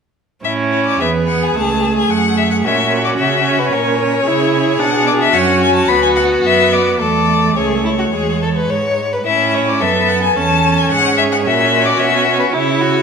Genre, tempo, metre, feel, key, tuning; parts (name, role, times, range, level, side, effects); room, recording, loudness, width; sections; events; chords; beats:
quick classical-period movement for string quartet; 110 BPM; 4/4; rubato; A major; A4 = 440 Hz
rich violin; melody; 0.4-13.0 s; B4 to B5; -16 LUFS; left 6 dB
rich violin; second line; 0.4-13.0 s; E4 to C#5; -19 LUFS; left 2 dB
rich viola; accompaniment; 0.4-13.0 s; G#3 to E4; -18 LUFS; right 4 dB
warm cello; bass; 0.4-13.0 s; C#2 to C#3; -20 LUFS; right 6 dB
wet recital hall reverb, RT60 1.6 s; minimal, uncompressed stereo recording; -12 LUFS; side -6 dB against mid
0.4-13.0 A section
0.4 A; 2.6 F#7/A#; 4.8 Bm; 5.9 Bm/D; 7.0 A/E; 8.1 E; 9.3 A; 11.5 F#7/A#
| 0.45 1.01 1.56 2.10 | 2.65 3.19 3.73 4.26 | 4.80 5.34 5.89 6.44 | 7.00 7.56 8.12 8.69 | 9.26 9.81 10.36 10.91 | 11.46 12.00 12.54